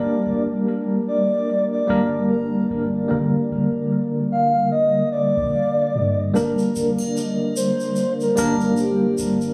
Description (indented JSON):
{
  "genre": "trip hop",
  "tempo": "74 BPM",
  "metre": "4/4",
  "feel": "swing 58% on 16ths",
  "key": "G minor",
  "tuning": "A4 = 442 Hz",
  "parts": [
    { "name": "pure breathy sine lead", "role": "melody", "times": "0.0-9.2 s", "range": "G4 to F5", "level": "-25 LUFS", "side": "equal", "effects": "chorus, tape echo" },
    { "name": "tine electric piano", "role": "accompaniment", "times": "0.0-9.5 s", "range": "D3 to Bb4", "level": "-23 LUFS", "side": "equal", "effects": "tremolo" },
    { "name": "soft 808-style bass", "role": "bass", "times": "0.0-9.5 s", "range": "F1 to G2", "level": "-32 LUFS", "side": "equal", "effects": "none" },
    { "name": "tube shaker and triangle", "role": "percussion", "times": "6.4-9.5 s", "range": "none", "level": "-36 LUFS", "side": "equal", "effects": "none" }
  ],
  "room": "light reverb",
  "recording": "recorded on a phone in the room, studio reverb, compression",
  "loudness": "-21 LUFS",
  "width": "mono",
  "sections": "0.0-9.5 A section",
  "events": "none",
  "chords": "0.0 Gm",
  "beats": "0.67 1.48 2.29 | 3.10 3.91 4.72 5.53 | 6.34 7.15 7.96 8.77"
}